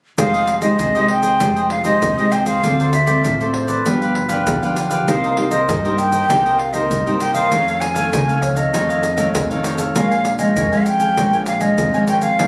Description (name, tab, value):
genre	samba and choro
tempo	98 BPM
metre	4/4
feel	straight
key	F minor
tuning	A4 = 440 Hz
part	breathy jazz flute	melody	0.2-12.5 s	B4 to G#5	-21 LUFS	equal	none
part	cavaquinho	accompaniment	0.2-12.5 s	D4 to Ab5	-26 LUFS	equal	none
part	nylon-string guitar	accompaniment	0.2-12.5 s	F2 to A4	-24 LUFS	equal	none
part	upright bass	bass	0.2-12.5 s	F1 to G2	-27 LUFS	equal	none
part	egg shaker, surdo and pandeiro	percussion	0.2-12.5 s	none	-27 LUFS	equal	none
room	moderate studio reverb, RT60 0.6 s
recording	recorded on a phone in the room, club reverb, compression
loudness	-17 LUFS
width	mono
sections	0.2-12.5 A section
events	none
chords	0.2 Fm9; 2.6 Dm7; 3.9 G7; 5.1 Cm7; 7.5 F7alt; 10.0 Bbm7